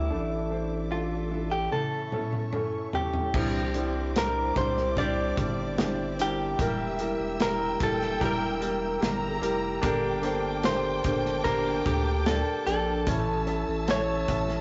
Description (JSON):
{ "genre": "pop ballad", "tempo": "74 BPM", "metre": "4/4", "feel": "straight", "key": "unclear", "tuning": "A4 = 440 Hz", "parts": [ { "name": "direct-recorded clean electric guitar", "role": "melody", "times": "0.0-14.6 s", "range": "E4 to D5", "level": "-33 LUFS", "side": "equal", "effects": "spring reverb" }, { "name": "warm baby grand piano", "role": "accompaniment", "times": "0.0-14.6 s", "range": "G2 to E5", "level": "-34 LUFS", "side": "equal", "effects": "none" }, { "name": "warm studio string section", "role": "sustained chords", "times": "0.0-14.6 s", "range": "Bb3 to E6", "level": "-42 LUFS", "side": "equal", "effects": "none" }, { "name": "fingerpicked steel-string acoustic guitar", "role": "arpeggios", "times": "0.0-14.6 s", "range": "A2 to C5", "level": "-40 LUFS", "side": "equal", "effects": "none" }, { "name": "saturated sub bass", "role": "bass", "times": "0.0-14.6 s", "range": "E1 to D2", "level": "-35 LUFS", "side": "equal", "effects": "none" }, { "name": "modern studio drum kit", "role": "drums", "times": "1.7-14.6 s", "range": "crash cymbal, hi-hat, kick drum, snare drum, toms", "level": "-34 LUFS", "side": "equal", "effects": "none" }, { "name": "dark symphonic violin section", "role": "second line", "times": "3.3-14.6 s", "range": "C5 to Bb5", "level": "-41 LUFS", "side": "equal", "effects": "none" } ], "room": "moderate studio reverb, RT60 0.5 s", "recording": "rough rehearsal-room recording, warm saturation, nothing above 7.8 kHz", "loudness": "-28 LUFS", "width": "mono", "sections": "0.0-3.3 A section; 3.3-14.6 B section", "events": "drum fill 1.7-3.3", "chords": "0.1 Asus4; 1.7 A; 3.3 Cadd9; 6.6 Edim; 9.8 Gmadd9; 13.1 A" }